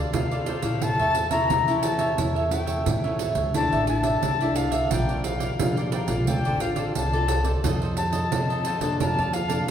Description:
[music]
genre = samba and choro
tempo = 88 BPM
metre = 4/4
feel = straight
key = D minor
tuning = A4 = 440 Hz
[part]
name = breathy bright concert flute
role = second line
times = 0.0-9.7 s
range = F5 to Bb5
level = -27 LUFS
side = left 4 dB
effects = none
[part]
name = cavaquinho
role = accompaniment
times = 0.0-9.7 s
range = D4 to A5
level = -30 LUFS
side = right 4 dB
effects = none
[part]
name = nylon-string guitar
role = accompaniment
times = 0.0-9.7 s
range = A2 to A4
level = -30 LUFS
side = left 2 dB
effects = none
[part]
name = upright bass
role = bass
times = 0.0-9.7 s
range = A1 to F3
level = -28 LUFS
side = equal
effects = none
[part]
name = pandeiro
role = percussion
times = 0.1-9.7 s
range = none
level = -28 LUFS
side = right 3 dB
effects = none
[sound]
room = wet recital hall reverb, RT60 1.9 s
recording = recorded in a church or concert hall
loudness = -22 LUFS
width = side -9 dB against mid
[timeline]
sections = 0.0-9.7 A section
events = flute solo 0.0-9.7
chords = 0.0 Dm7; 0.8 A; 3.5 Dsus2; 4.9 Bb6; 6.3 Dm7; 7.6 F7; 9.0 Bbmaj7/F

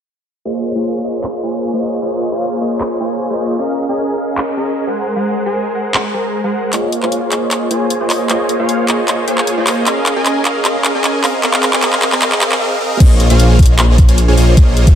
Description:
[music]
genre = future bass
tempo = 153 BPM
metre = 4/4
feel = half-time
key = Bb minor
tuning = A4 = 442 Hz
[part]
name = supersaw chords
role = riff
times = 0.5-15.0 s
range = Ab3 to Bb5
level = -15 LUFS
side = equal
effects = sidechain pumping, low-pass filter, dub echo
[part]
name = trap drum kit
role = drums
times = 1.2-14.9 s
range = crash cymbal, finger snaps, handclaps, hi-hat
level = -17 LUFS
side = equal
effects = high-pass filter on snare, high-pass filter on hats, high-pass filter on cymbals
[part]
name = wide detuned saw bass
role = bass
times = 13.0-15.0 s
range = Bb1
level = -11 LUFS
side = equal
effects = chorus, tube saturation, sidechain pumping
[part]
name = electronic kick drum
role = drums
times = 13.0-14.9 s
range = none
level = -7 LUFS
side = equal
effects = none
[sound]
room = moderate lush hall reverb, RT60 1.9 s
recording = high-pass filter, low-pass filter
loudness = -12 LUFS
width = side -9 dB against mid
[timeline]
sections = 0.5-6.7 A section; 6.7-13.0 B section; 13.0-15.0 C section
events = filter sweep 0.5-6.7, 6.7-13.0; build-up 6.7-13.0; drum fill 6.7-12.6; filter sweep on supersaw synth 6.7-13.0; break 12.6-13.0; drop 13.0-15.0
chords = 0.5 Bbm11; 3.6 Db69; 5.0 Ab9; 6.7 Bbm11; 9.9 Db69; 11.2 Abadd9; 13.0 Bbm11

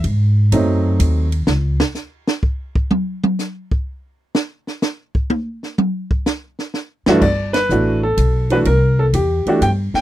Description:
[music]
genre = jazz piano trio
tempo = 125 BPM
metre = 3/4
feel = swing 68% on 8ths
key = unclear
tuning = A4 = 441 Hz
[part]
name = upright bass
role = bass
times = 0.0-1.8, 7.1-10.0 s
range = G1 to G#2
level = -16 LUFS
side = equal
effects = none
[part]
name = compact cocktail drum kit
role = drums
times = 0.0-10.0 s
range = crash cymbal, hi-hat, kick drum, ride cymbal, snare drum, toms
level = -19 LUFS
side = equal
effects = none
[part]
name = warm upright piano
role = melody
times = 0.5-1.3, 7.1-10.0 s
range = G2 to G5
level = -16 LUFS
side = right 1 dB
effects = none
[sound]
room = little or no reverb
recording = dry, close 1970s-style studio recording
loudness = -15 LUFS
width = side -14 dB against mid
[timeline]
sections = 0.0-7.2 A section; 7.2-10.0 B section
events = upright piano solo 0.0-7.2; drum solo 1.5-7.2; band accent 7.5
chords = 0.0 G#7b9; 1.5 N.C.; 6.7 Dadd9; 7.2 Gmaj9; 8.7 C

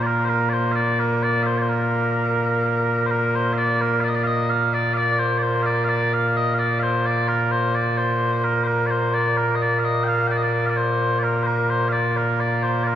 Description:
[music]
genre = scottish traditional, Scottish pipe music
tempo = 86 BPM (dotted quarters)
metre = 6/8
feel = straight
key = Bb major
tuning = A4 = 442 Hz
[part]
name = mellow small bagpipes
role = solo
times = 0.0-13.0 s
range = Bb2 to G5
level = -19 LUFS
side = equal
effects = none
[sound]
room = wet concert hall reverb, RT60 2.1 s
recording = heard from further back in the room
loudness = -19 LUFS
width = side -10 dB against mid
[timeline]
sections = 0.0-3.1 A section; 3.1-13.0 A section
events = none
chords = none

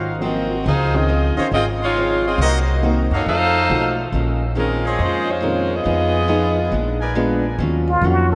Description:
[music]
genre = jazz, big band swing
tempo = 138 BPM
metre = 4/4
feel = swing 65% on 8ths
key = Bb minor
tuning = A4 = 443 Hz
[part]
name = clear saxophone section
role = melody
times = 0.0-7.0 s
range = Ab3 to F5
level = -23 LUFS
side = equal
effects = none
[part]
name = picked old ladder-braced acoustic guitar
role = accompaniment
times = 0.0-8.3 s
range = Ab2 to Ab4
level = -28 LUFS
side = equal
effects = none
[part]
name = brilliant trumpet section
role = stabs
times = 0.0-7.6 s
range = F4 to C6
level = -29 LUFS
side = equal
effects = none
[part]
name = upright bass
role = bass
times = 0.0-8.3 s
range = Ab1 to Gb2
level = -23 LUFS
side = equal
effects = none
[part]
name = dark baby grand piano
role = accompaniment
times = 0.2-8.3 s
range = Eb3 to Bb4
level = -29 LUFS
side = equal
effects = none
[part]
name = trumpet with plunger mute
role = melody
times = 7.9-8.3 s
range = F4 to Gb4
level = -21 LUFS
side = equal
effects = none
[part]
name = warm trombone section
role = sustained chords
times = 8.0-8.2 s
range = F3 to Gb4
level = -28 LUFS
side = equal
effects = none
[sound]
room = wet cathedral reverb, RT60 5.1 s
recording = in a vast, echoing space, nothing above 10.9 kHz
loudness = -19 LUFS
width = mono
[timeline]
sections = 0.0-7.6 A section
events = none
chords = 0.0 Ab13; 0.7 Dbmaj9; 2.4 Cm7b5; 3.3 F7b9; 4.1 Bbm11; 5.9 Fm7b5; 6.7 Bb7b9; 7.6 Ebm9

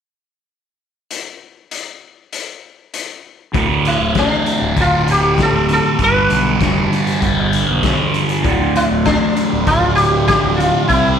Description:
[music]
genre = psychedelic rock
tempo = 98 BPM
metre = 4/4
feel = straight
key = D dorian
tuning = A4 = 440 Hz
[part]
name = raw garage drum kit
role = drums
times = 1.1-11.0 s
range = hi-hat, kick drum, snare drum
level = -22 LUFS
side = left 4 dB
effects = none
[part]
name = thick fuzz guitar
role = riff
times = 3.5-11.2 s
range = D2 to C4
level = -16 LUFS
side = right 1 dB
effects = distortion, phaser
[part]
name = fuzz fingered electric bass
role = bass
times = 3.5-11.2 s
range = D1 to D2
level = -21 LUFS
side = equal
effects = overdrive
[part]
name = sitar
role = melody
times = 3.9-11.2 s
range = D4 to B4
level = -17 LUFS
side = equal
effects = slapback echo
[part]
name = mellow tonewheel organ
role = sustained chords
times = 8.4-11.2 s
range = F3 to C6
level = -27 LUFS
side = right 13 dB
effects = slow rotary speaker
[sound]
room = light reverb, small room reverb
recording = 1960s-style stereo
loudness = -12 LUFS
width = side -8 dB against mid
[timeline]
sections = 1.1-3.6 A section; 3.6-11.2 B section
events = none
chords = 1.1 N.C.; 3.6 D5; 6.0 G; 8.5 Dm7

